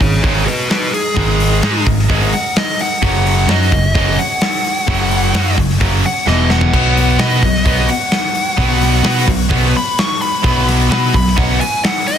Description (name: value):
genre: hard rock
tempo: 129 BPM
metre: 4/4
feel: straight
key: unclear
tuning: A4 = 441 Hz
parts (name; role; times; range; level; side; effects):
- dark smooth lead guitar; melody; 0.0-12.2 s; F#4 to C#6; -18 LUFS; equal; overdrive, slapback echo
- overdriven tonewheel organ; sustained chords; 0.0-12.2 s; E3 to C#5; -30 LUFS; equal; none
- cranked stack guitar; riff; 0.0-11.6 s; E2 to B4; -21 LUFS; left 11 dB; overdrive
- cranked stack guitar; riff; 0.0-11.6 s; E2 to B4; -20 LUFS; right 11 dB; overdrive
- distorted electric guitar; riff; 0.0-11.6 s; E2 to B4; -23 LUFS; equal; overdrive
- picked electric bass; bass; 0.0-11.6 s; E1 to B2; -16 LUFS; equal; none
- big rock drum kit; drums; 0.0-12.2 s; crash cymbal, hi-hat, kick drum, snare drum, toms; -17 LUFS; equal; none
room: light reverb, studio reverb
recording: dense, heavily limited modern master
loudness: -12 LUFS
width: side -9 dB against mid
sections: 0.0-12.2 A section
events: lead electric guitar solo 0.0-12.2; drum fill 6.3-6.7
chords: 0.0 G#5; 3.0 F#sus2; 6.3 E5; 6.7 B5